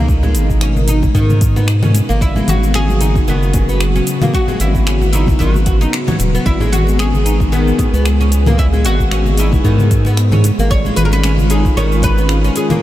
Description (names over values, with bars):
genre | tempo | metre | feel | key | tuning
organic downtempo | 113 BPM | 4/4 | swing 55% on 16ths | unclear | A4 = 440 Hz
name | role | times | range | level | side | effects
warm analog pad | sustained chords | 0.0-12.8 s | B2 to A#4 | -20 LUFS | left 1 dB | chorus, sidechain pumping
oud | arpeggios | 0.0-12.8 s | D#3 to F#4 | -22 LUFS | equal | analog delay
round analog bass | bass | 0.0-12.5 s | D#1 to G#2 | -14 LUFS | equal | none
deep house drum kit | drums | 0.1-12.8 s | cabasa, congas, finger snaps, hi-hat | -23 LUFS | left 2 dB | overdrive
electronic kick drum | drums | 0.1-12.1 s | none | -16 LUFS | equal | overdrive
congas | percussion | 0.2-12.8 s | none | -24 LUFS | left 1 dB | none
oud | melody | 2.2-12.8 s | B3 to C#5 | -22 LUFS | equal | analog delay
room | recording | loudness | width
light reverb, small room ambience | none | -11 LUFS | side -14 dB against mid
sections
0.0-12.8 A section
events
none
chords
0.0 G#madd9; 2.2 F#sus4; 6.5 E/G# (rootless); 10.7 C#add9/G#